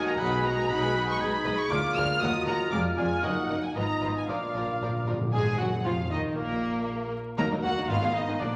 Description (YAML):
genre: quick classical-period movement for symphony orchestra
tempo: 117 BPM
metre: 2/4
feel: straight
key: Eb minor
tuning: A4 = 440 Hz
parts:
  - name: rich studio violin section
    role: melody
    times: 0.0-8.6 s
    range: Bb4 to F6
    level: -34 LUFS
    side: equal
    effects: none
  - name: clear clarinet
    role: second line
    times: 0.0-5.1 s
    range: D#4 to A#4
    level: -40 LUFS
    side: equal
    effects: none
  - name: concert flute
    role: second line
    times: 0.0-8.6 s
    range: Bb4 to G#6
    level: -40 LUFS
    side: equal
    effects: none
  - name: mellow cor anglais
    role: second line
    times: 0.0-8.6 s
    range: Bb3 to F5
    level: -37 LUFS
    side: equal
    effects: none
  - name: rich studio violin section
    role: second line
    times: 0.0-8.6 s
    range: Ab3 to G#5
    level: -38 LUFS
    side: equal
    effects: none
  - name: rich studio viola section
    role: accompaniment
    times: 0.0-8.5 s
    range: Eb3 to F#4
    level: -37 LUFS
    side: equal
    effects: none
  - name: dark French horn section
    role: sustained chords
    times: 0.0-8.2 s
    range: Bb2 to Ab4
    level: -37 LUFS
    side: equal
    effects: none
  - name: rich chamber cello section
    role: bass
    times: 0.0-8.6 s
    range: D2 to D#3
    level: -38 LUFS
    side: equal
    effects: none
  - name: rich studio double bass section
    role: bass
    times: 0.0-8.5 s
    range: F1 to D#2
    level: -38 LUFS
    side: equal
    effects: none
  - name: timpani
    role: percussion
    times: 2.2-8.6 s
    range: Bb2 to Eb3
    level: -37 LUFS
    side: equal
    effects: none
room: wet recital hall reverb, RT60 1.7 s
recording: vinyl crackle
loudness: -28 LUFS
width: mono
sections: 0.0-5.3 A section; 5.3-8.6 B section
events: timpani fill 4.3-5.3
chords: 0.2 G#m7/B; 1.2 Abm/Cb; 1.7 Bb7; 2.2 Ebm; 2.7 Ddim/F; 3.2 Ebm/Gb; 3.8 Fm7b5; 4.3 Bb; 5.3 Gbsus2; 5.8 Ebsus2/F; 6.4 N.C.; 7.4 Ebm; 7.9 Abm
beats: | 0.20 0.70 | 1.20 1.71 | 2.22 2.73 | 3.24 3.75 | 4.28 4.80 | 5.33 5.84 | 6.36 6.87 | 7.38 7.89 | 8.40